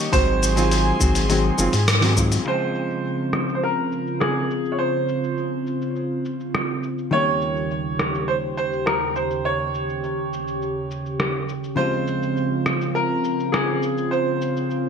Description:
sunset chillout; 103 BPM; 4/4; straight; Db lydian; A4 = 439 Hz
hollow-body jazz guitar; accompaniment; 0.0-14.9 s; Db3 to G4; -26 LUFS; moving between left 4 dB and right 3 dB; auto-pan, digital delay
airy breathy pad; sustained chords; 0.0-14.9 s; Eb2 to Db6; -26 LUFS; right 1 dB; chorus
clear concert grand piano; melody; 0.1-14.9 s; Ab4 to Db5; -25 LUFS; right 2 dB; wide subtle chorus, digital delay
warm sub bass; bass; 0.1-2.4 s; Gb1 to Ab2; -21 LUFS; equal
dusty soul sampler-style drum kit; drums; 0.1-14.8 s; crash cymbal, hi-hat, rim click, shaker; -25 LUFS; left 1 dB; low-pass filter on hats, low-pass filter on perc, low-pass filter on snare, low-pass filter on cymbals, low-pass filter on room, gated reverb
electronic kick drum; drums; 0.1-2.3 s; -22 LUFS; equal
wet lush hall reverb, RT60 1.5 s; bright 1980s-style digital production; -20 LUFS; side -6 dB against mid
0.0-2.5 A section; 2.5-14.9 B section
band accent 1.9
0.1 Ab7; 2.5 Dbmaj7; 7.1 Eb7; 11.8 Dbmaj7

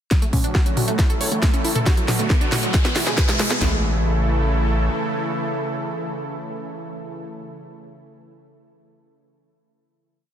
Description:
uplifting trance; 137 BPM; 4/4; straight; A major; A4 = 444 Hz
supersaw pad; sustained chords; 0.1-7.2 s; B2 to A4; -26 LUFS; right 1 dB; sidechain pumping
wide unison pluck; arpeggios; 0.1-3.8 s; F#3 to C#5; -27 LUFS; right 1 dB; sidechain pumping, dub echo
house drum kit; drums; 0.1-3.7 s; kick drum, snare drum, toms; -19 LUFS; equal
house drum kit; drums; 0.1-3.6 s; hi-hat, snare drum, toms; -24 LUFS; equal; sidechain pumping on hats, sidechain pumping on toms
riser; sound effects; 1.2-3.6 s; -30 LUFS; left 1 dB
gritty driven synth bass; bass; 0.3-4.9 s; E1 to D2; -24 LUFS; equal; sidechain pumping, high-pass filter
light reverb; dense, heavily limited modern master; -18 LUFS; side -10 dB against mid
0.1-3.6 build; 3.6-7.1 final chord
build-up 0.1-3.6; drum fill 0.1-3.6; filter sweep on synth pluck 0.1-3.6; riser 1.2-3.6
0.1 Dmaj7; 1.0 A; 1.9 Bm7; 2.7 E; 3.6 A

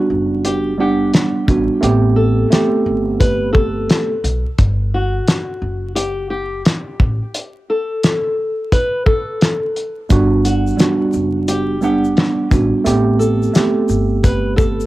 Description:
hip hop, boom-bap hip-hop; 87 BPM; 4/4; swing 62% on 16ths; G major; A4 = 439 Hz
flamenco guitar; melody; 0.0-14.9 s; F#4 to B4; -21 LUFS; left 2 dB; high-pass filter, low-pass filter, cassette tape, analog delay
mellow tine electric piano; accompaniment; 0.0-4.1, 10.1-14.9 s; G3 to F#5; -16 LUFS; right 3 dB; medium stereo tremolo, cassette tape, high-pass filter, low-pass filter
upright bass; bass; 0.1-14.9 s; F#1 to B1; -20 LUFS; equal
cloth-damped thuddy drum kit; drums; 0.4-14.8 s; hi-hat, kick drum, shaker, snare drum; -15 LUFS; equal
egg shaker; percussion; 10.1-14.9 s; -39 LUFS; left 9 dB
light reverb; home recording on cassette, vinyl crackle; -14 LUFS; side -17 dB against mid
0.0-14.9 A section
break 4.6-10.1
0.0 Gmaj7; 1.8 Am9; 4.6 N.C.; 10.1 Gmaj7; 12.9 Am9

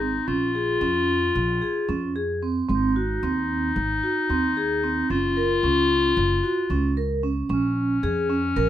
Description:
contemporary instrumental, chamber music in an uneven meter; 224 BPM (eighths); 9/8; straight; A4 = 440 Hz
bright clarinet; second line; 0.0-8.7 s; Db4 to F4; -24 LUFS; left 4 dB
vibraphone with medium hard mallets; arpeggios; 0.0-8.7 s; C4 to Bb4; -25 LUFS; right 3 dB
upright bass; bass; 0.0-8.7 s; Gb1 to F2; -28 LUFS; equal
light reverb; -21 LUFS; side -12 dB against mid
0.0-7.5 A section; 7.5-8.7 B section
0.3 Bbm7; 2.7 Ab7; 5.1 Gbmaj7; 7.5 Bbm7

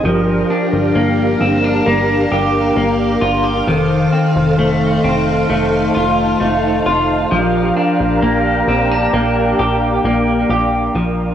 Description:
dream pop; 66 BPM; 4/4; straight; Bb major; A4 = 441 Hz
ensemble organ-string; sustained chords; 0.0-11.3 s; D4 to F5; -17 LUFS; right 1 dB; ensemble chorus, cassette tape
clean electric guitar; arpeggios; 0.0-11.3 s; Eb3 to Ab4; -15 LUFS; left 1 dB; lush chorus, cassette tape, tape echo
plucky analog bass; bass; 0.0-11.3 s; F1 to Bb1; -21 LUFS; equal
wet spring reverb, RT60 1.9 s; home recording on cassette; -12 LUFS; side -9 dB against mid
0.0-11.0 A section
0.0 Gm7; 3.7 F7; 7.3 Bb6

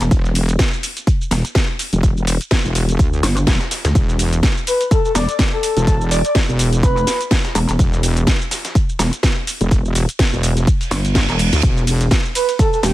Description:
bass house; 125 BPM; 4/4; swing 56% on 16ths; E phrygian; A4 = 441 Hz
pulsing pluck wobble bass; bass; 0.0-12.9 s; E1 to D2; -16 LUFS; equal; chorus, sidechain pumping
dusty soul sampler-style drum kit; drums; 0.0-12.9 s; hi-hat, snare drum; -31 LUFS; left 1 dB
garage drum kit; drums; 0.0-12.9 s; hi-hat, ride cymbal, shaker, snare drum; -22 LUFS; equal
wobble bass; bass; 0.1-12.1 s; E1 to D2; -17 LUFS; equal; chorus, tube saturation, sidechain pumping
electronic kick drum; drums; 0.1-12.7 s; -16 LUFS; equal
breathy flute-like synth lead; melody; 4.7-7.2, 12.4-12.9 s; G4 to D5; -20 LUFS; equal; tremolo, lush chorus, cassette tape, tape echo
reverse cymbal; sound effects; 10.9-11.6 s; -24 LUFS; right 5 dB
little or no reverb; -14 LUFS; side -15 dB against mid
0.0-12.9 A section
reverse cymbal 10.9-11.6

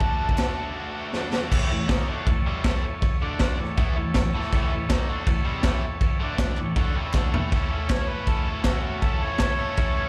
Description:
garage rock duo or trio; 160 BPM; 4/4; straight; A major; A4 = 440 Hz
overdriven harmonica; melody; 0.0-1.1, 7.9-10.1 s; F#4 to A5; -33 LUFS; equal; slapback echo
combo organ; sustained chords; 0.0-10.1 s; D4 to D5; -37 LUFS; equal; spring reverb
biting overdriven guitar; riff; 0.0-10.1 s; A2 to A4; -33 LUFS; equal; slapback echo
raw garage drum kit; drums; 0.0-9.9 s; crash cymbal, kick drum, snare drum, toms; -26 LUFS; equal
group handclap; percussion; 0.4-0.5, 4.9-9.5 s; -43 LUFS; equal
light reverb; live gig heard through the venue's PA, club reverb; -25 LUFS; mono
0.0-1.5 A section; 1.5-7.5 B section; 7.5-10.1 C section
break 0.8-1.5; drum fill 1.1-1.5, 7.2-7.5; harmonica solo 7.5-10.1
0.0 D; 1.5 A; 3.2 D5; 3.6 A; 6.2 D5; 6.6 A

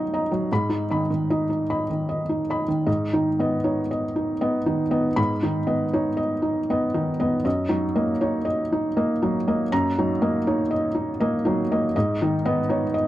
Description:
neoclassical minimalist piano; 75-83 BPM; 3/4; rubato; G# minor; A4 = 441 Hz
felt-muted upright piano; solo; 0.0-13.1 s; F#2 to B5; -21 LUFS; equal
light reverb; dry, close 1970s-style studio recording; -21 LUFS; side -14 dB against mid
0.0-2.9 A section; 2.9-13.1 B section
0.5 G#m; 7.5 D#m/F#; 11.9 G#m

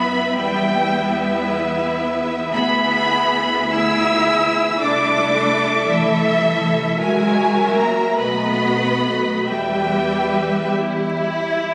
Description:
classical, slow romantic movement for string orchestra; 44-57 BPM (dotted quarters); 6/8; rubato; E minor; A4 = 441 Hz
warm studio violin section; melody; 0.0-10.8 s; E5 to E6; -23 LUFS; equal
clear symphonic violin section; second line; 0.0-11.7 s; E4 to E5; -25 LUFS; equal
warm symphonic viola section; accompaniment; 0.0-11.7 s; F#3 to G4; -26 LUFS; equal
warm symphonic cello section; bass; 0.0-10.8 s; E3 to E4; -24 LUFS; equal
warm symphonic double bass section; bass; 0.0-11.7 s; B1 to F#2; -31 LUFS; equal
wet concert hall reverb, RT60 2.5 s; recorded on a phone in the room, studio reverb, vinyl crackle; -18 LUFS; mono
0.0-11.7 A section
0.4 Em; 2.5 E7/D; 4.8 Am/C; 7.0 F#7/C#; 8.2 B7; 9.5 Em

